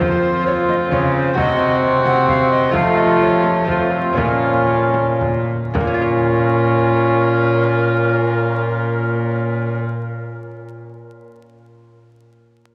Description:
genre	classical, renaissance-style consort dance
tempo	109-132 BPM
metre	3/4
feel	straight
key	Bb harmonic minor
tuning	A4 = 440 Hz
part	alto recorder	melody	0.0-9.8 s	Bb4 to Gb5	-26 LUFS	equal	none
part	warm viola	second line	0.0-9.8 s	F4 to Gb4	-24 LUFS	equal	none
part	brilliant trombone	accompaniment	0.0-9.8 s	A3 to Db4	-22 LUFS	equal	none
part	lute	accompaniment	0.0-10.6 s	Bb2 to Db5	-28 LUFS	equal	none
part	rich cello	bass	0.0-9.8 s	Bb2 to F3	-23 LUFS	equal	none
part	frame drum	percussion	0.0-6.0 s	none	-30 LUFS	equal	none
room	wet cathedral reverb, RT60 4.3 s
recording	vinyl crackle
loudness	-17 LUFS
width	mono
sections	0.0-5.7 A section; 5.7-9.0 B section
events	slowing down 2.1-5.7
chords	0.0 F5; 1.4 Cdim; 2.7 F; 4.2 Bbm

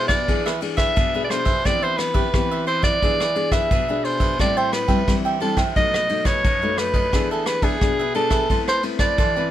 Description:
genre	samba and choro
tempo	88 BPM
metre	4/4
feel	straight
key	unclear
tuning	A4 = 440 Hz
part	clear soprano saxophone	melody	0.0-9.5 s	G#4 to E5	-22 LUFS	right 1 dB	plate reverb
part	cavaquinho	accompaniment	0.0-9.5 s	D4 to A5	-28 LUFS	right 6 dB	none
part	nylon-string guitar	accompaniment	0.0-9.5 s	F#2 to B4	-26 LUFS	left 4 dB	none
part	vintage brush drum kit	drums	0.1-9.3 s	kick drum, ride cymbal, rim click	-23 LUFS	equal	none
room	light reverb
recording	close, detailed microphones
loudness	-18 LUFS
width	side -12 dB against mid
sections	0.0-9.5 A section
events	none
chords	0.3 E7; 1.7 Cmaj7/E; 3.0 E7; 4.4 Am7; 5.8 B7; 7.1 E7; 8.5 Amadd9

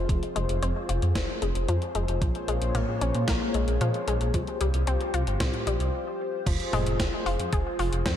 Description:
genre	synthwave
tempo	113 BPM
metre	4/4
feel	straight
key	F minor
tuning	A4 = 440 Hz
part	chorused pulse-width pad	sustained chords	0.0-8.2 s	Bb3 to Db5	-31 LUFS	left 2 dB	sidechain pumping
part	analog pluck	arpeggios	0.0-8.2 s	F3 to Ab4	-32 LUFS	left 4 dB	chorus, ping-pong delay
part	dark detuned saw bass	bass	0.0-8.2 s	F1 to Bb2	-28 LUFS	equal	sidechain pumping
part	electronic kick drum	drums	0.1-8.2 s	none	-28 LUFS	equal	none
part	gated 80s digital drum machine	drums	0.1-8.2 s	crash cymbal, hi-hat, snare drum, toms	-33 LUFS	equal	gated reverb, gated reverb snare
room	light reverb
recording	dark, warm production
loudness	-24 LUFS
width	side -10 dB against mid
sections	0.0-6.5 A section; 6.5-8.2 B section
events	break 5.9-6.5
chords	0.0 Fm; 2.2 Bbm7; 4.3 Csus4; 6.5 Fm

